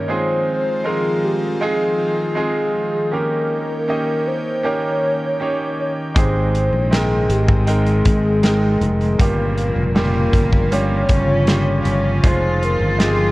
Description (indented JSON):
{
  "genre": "pop ballad",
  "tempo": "79 BPM",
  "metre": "4/4",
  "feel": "straight",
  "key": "Ab major",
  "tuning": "A4 = 442 Hz",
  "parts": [
    { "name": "hollow clarinet-like synth lead", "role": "melody", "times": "0.0-13.3 s", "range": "G4 to Db5", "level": "-22 LUFS", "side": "equal", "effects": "chorus" },
    { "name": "clear concert grand piano", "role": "accompaniment", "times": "0.0-13.3 s", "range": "G2 to G5", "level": "-23 LUFS", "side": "right 2 dB", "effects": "none" },
    { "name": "airy breathy pad", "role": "sustained chords", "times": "0.0-13.3 s", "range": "Db3 to G5", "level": "-26 LUFS", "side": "equal", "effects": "chorus" },
    { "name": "rich chamber cello section", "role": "second line", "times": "6.2-13.3 s", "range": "Ab2 to F4", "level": "-23 LUFS", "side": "left 1 dB", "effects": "none" },
    { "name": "fretless electric bass", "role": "bass", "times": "6.2-13.3 s", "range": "F1 to Bb1", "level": "-19 LUFS", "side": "equal", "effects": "none" },
    { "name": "loose indie drum kit", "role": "drums", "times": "6.2-13.2 s", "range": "hi-hat, kick drum, snare drum", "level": "-18 LUFS", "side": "equal", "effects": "none" }
  ],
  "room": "light reverb, small room reverb",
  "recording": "worn, warbling old tape, cassette tape, warbly pitch drift",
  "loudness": "-15 LUFS",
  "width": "side -19 dB against mid",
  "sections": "0.0-13.3 A section",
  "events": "none",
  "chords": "0.1 Fm7; 3.1 Eb7; 6.2 Abmaj7; 9.2 Gm7b5; 12.2 Fm7"
}